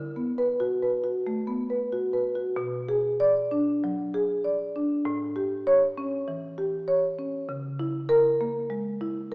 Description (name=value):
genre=classical, contemporary piece for solo marimba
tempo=90-100 BPM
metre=4/4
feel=rubato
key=B minor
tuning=A4 = 439 Hz
part: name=marimba with medium mallets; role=solo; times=0.0-9.3 s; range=A2 to D5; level=-24 LUFS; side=equal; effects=none
room=wet recital hall reverb, RT60 1.4 s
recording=heard from further back in the room, small speaker sound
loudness=-24 LUFS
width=side -27 dB against mid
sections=0.0-2.6 A section; 2.6-9.3 B section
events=none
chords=0.0 D6; 2.6 Bm6; 5.1 A7; 7.5 C#m6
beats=0.62 1.27 1.92 | 2.57 3.20 3.82 4.44 | 5.05 5.67 6.28 6.89 | 7.49 8.11 8.71 9.32